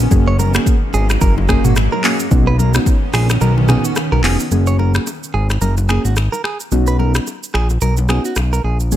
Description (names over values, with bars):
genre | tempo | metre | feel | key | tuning
afrobeats | 109 BPM | 4/4 | swing 58% on 16ths | F# major | A4 = 440 Hz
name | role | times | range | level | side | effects
soft electric-piano-like synth keys | accompaniment | 0.0-9.0 s | A#3 to G#4 | -20 LUFS | right 1 dB | chorus
granular cloud pad | sustained chords | 0.0-4.5 s | D#3 to C#4 | -24 LUFS | equal | built-in reverb, sidechain pumping
fat analog bass | bass | 0.0-9.0 s | E#1 to B1 | -15 LUFS | equal | none
afro-pop drum kit | drums | 0.0-9.0 s | finger snaps, handclaps, hi-hat, kick drum, rim click, shaker, toms | -18 LUFS | equal | none
congas and bongos | percussion | 0.1-9.0 s | none | -26 LUFS | left 8 dB | none
direct-recorded clean electric guitar | riff | 0.3-8.8 s | F#4 to C#5 | -24 LUFS | right 5 dB | ping-pong delay
room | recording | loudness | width
digital ambience | none | -13 LUFS | side -12 dB against mid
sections
0.0-4.5 A section; 4.5-9.0 B section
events
kick muted 3.4-4.5; break 4.5-9.0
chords
0.1 F#add9; 2.3 Badd9; 4.5 F#add9; 6.7 Badd9